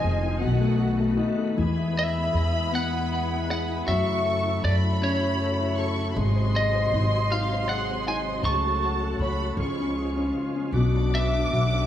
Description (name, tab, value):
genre	pop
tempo	52 BPM (dotted quarters)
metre	6/8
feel	straight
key	F# minor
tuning	A4 = 440 Hz
part	lightly driven lead guitar	melody	0.0-11.9 s	C#5 to C#6	-28 LUFS	equal	digital delay
part	warm studio violin section	second line	0.0-11.9 s	F#5 to D6	-33 LUFS	right 1 dB	digital delay
part	warm grand piano	accompaniment	0.0-11.9 s	B2 to F#5	-28 LUFS	left 4 dB	none
part	bright tonewheel organ	sustained chords	0.0-11.9 s	B#2 to G#4	-32 LUFS	right 1 dB	overdrive, chorus vibrato, slow rotary speaker
part	upright bass	bass	0.0-11.9 s	F1 to F#2	-26 LUFS	equal	none
room	light reverb, studio reverb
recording	small room ambience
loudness	-22 LUFS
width	side -11 dB against mid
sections	0.0-1.6 A section; 1.6-11.9 A section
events	none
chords	0.4 B7; 1.6 E; 3.9 F#m7; 6.2 G#7; 8.4 F#m/C#; 9.6 C#; 10.7 Bm